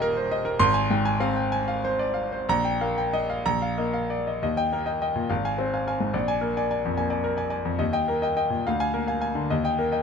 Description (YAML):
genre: classical, romantic character piece for solo piano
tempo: 60-75 BPM (dotted quarters)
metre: 6/8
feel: rubato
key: Eb major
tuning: A4 = 442 Hz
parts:
  - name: clear grand piano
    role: solo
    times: 0.0-10.0 s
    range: Eb1 to C6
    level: -23 LUFS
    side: equal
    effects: none
room: light reverb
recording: close, detailed microphones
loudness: -23 LUFS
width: side -6 dB against mid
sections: 0.0-4.4 A section; 4.4-10.0 B section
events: none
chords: 0.0 Eb; 0.6 Fm/Ab; 2.5 Eb/Bb; 3.4 Bb; 4.4 Eb; 5.3 Fm/Ab; 6.1 Bb7; 7.8 Eb; 8.7 Bb7/D; 9.5 Eb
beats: | 0.60 1.53 | 2.48 3.45 | 4.42 5.29 | 6.14 6.97 | 7.80 8.66 | 9.49